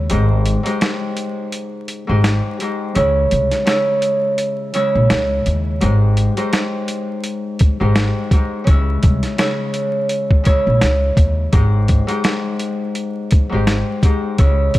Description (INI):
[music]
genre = hip hop, boom-bap hip-hop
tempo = 84 BPM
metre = 4/4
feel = swing 56% on 16ths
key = Ab major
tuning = A4 = 440 Hz
[part]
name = Celtic harp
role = accompaniment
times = 0.0-14.8 s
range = Ab2 to Db5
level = -19 LUFS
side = equal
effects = high-pass filter, low-pass filter
[part]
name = upright bass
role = bass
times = 0.0-14.8 s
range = Ab1 to Eb2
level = -16 LUFS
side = equal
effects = none
[part]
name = boom bap sampler-style drum kit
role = drums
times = 0.1-14.8 s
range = hi-hat, kick drum, snare drum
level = -16 LUFS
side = equal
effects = none
[sound]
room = light reverb, studio ambience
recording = dry, gritty hardware recording, vinyl crackle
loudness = -14 LUFS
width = side -16 dB against mid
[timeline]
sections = 0.0-14.8 A section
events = break 0.0-5.8; kick muted 5.8-7.2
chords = 0.1 Abmaj7; 3.0 Dbm; 5.8 Abmaj7; 8.7 Dbm; 11.5 Abmaj7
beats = | 0.10 0.82 1.53 2.25 | 2.96 3.67 4.39 5.10 | 5.82 6.53 7.25 7.96 | 8.67 9.39 10.10 10.82 | 11.53 12.24 12.96 13.67 | 14.39